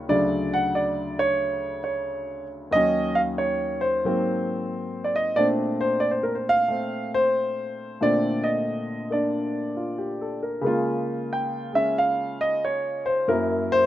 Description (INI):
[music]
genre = solo jazz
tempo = 91 BPM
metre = 4/4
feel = swing 67% on 8ths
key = unclear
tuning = A4 = 440 Hz
[part]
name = warm grand piano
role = solo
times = 0.0-13.9 s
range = D2 to G5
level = -22 LUFS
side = equal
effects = none
[sound]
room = small room ambience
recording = rough home demo mix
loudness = -22 LUFS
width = side -13 dB against mid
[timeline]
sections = 0.0-10.6 A section; 10.6-13.9 B section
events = grand piano solo 10.6-13.9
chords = 0.1 Dmaj7; 2.7 Ebm7; 4.0 Ab9; 5.4 Bbmaj9; 10.6 Db6; 13.3 Gb7